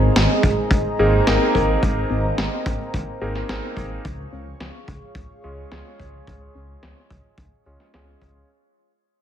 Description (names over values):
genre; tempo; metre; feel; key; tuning
synthwave; 108 BPM; 4/4; straight; unclear; A4 = 440 Hz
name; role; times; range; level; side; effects
chorused pulse-width pad; sustained chords; 0.0-8.5 s; Ab4 to Db6; -25 LUFS; right 2 dB; sidechain pumping
soft round pluck; arpeggios; 0.0-8.4 s; F3 to Db5; -27 LUFS; left 2 dB; chorus, tape echo, slapback echo
dark detuned saw bass; bass; 0.0-8.4 s; Ab1 to Db2; -24 LUFS; equal; none
electronic snare drum; drums; 0.2-8.0 s; none; -24 LUFS; equal; overdrive, low-pass filter on hats, low-pass filter on snare, low-pass filter on room, slapback echo
kick drum; drums; 0.4-8.3 s; none; -23 LUFS; equal; none
bright electric grand piano; stabs; 1.0-8.5 s; Ab3 to Db5; -27 LUFS; equal; low-pass filter, tape echo, slapback echo
room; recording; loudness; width
moderate lush hall reverb, RT60 2.0 s; big arena sound; -18 LUFS; side -9 dB against mid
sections
0.0-8.5 A section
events
fade-out 0.0-8.5; filter sweep on synth arpeggio sound 0.0-8.5; filter sweep on electric grand piano 0.0-8.5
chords
0.0 Abadd9; 4.0 Db